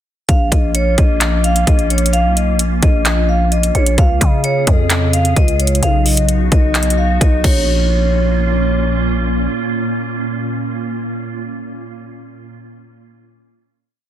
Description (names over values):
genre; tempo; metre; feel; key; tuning
hip hop, trap; 130 BPM; 4/4; half-time; Bb phrygian; A4 = 438 Hz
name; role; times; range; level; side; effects
vibraphone with medium mallets; melody; 0.3-9.0 s; Db5 to F5; -20 LUFS; equal; tape echo
glassy FM pad; sustained chords; 0.4-11.2 s; Bb2 to Ab4; -22 LUFS; right 1 dB; ensemble chorus, built-in reverb
growling 808-style bass; bass; 0.3-9.5 s; Bb1 to Db3; -16 LUFS; equal; none
trap drum kit; drums; 0.3-7.5 s; crash cymbal, handclaps, hi-hat, kick drum; -15 LUFS; equal; none
room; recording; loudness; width
digital ambience; dense, heavily limited modern master; -12 LUFS; side -11 dB against mid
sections
0.3-7.7 hook; 7.7-11.4 final hit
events
none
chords
0.3 Bbm; 4.0 Db; 5.8 B; 7.4 Bbm